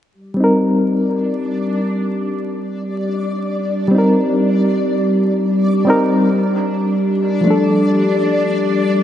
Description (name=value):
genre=trip hop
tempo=68 BPM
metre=4/4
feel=swing 57% on 16ths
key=C dorian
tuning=A4 = 438 Hz
part: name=warbly tape-like pad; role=sustained chords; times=0.1-9.0 s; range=G3 to G4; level=-18 LUFS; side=equal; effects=chorus, built-in reverb
part: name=backwards swelling texture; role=texture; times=1.0-9.0 s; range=D4 to D5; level=-24 LUFS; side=left 1 dB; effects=built-in reverb, lush chorus
part: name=bright reed electric piano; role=accompaniment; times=0.3-9.0 s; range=F3 to Bb4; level=-17 LUFS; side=left 1 dB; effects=overdrive, tremolo, low-pass filter, tape echo
room=wet plate reverb, RT60 3.5 s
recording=dreamy mix soaked in reverb, vinyl crackle, nothing above 10.8 kHz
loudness=-14 LUFS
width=side -10 dB against mid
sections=0.1-9.0 A section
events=none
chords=0.1 Cm7; 7.2 Dm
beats=| 0.14 1.02 1.91 2.79 | 3.67 4.55 5.44 6.32 | 7.20 8.08 8.97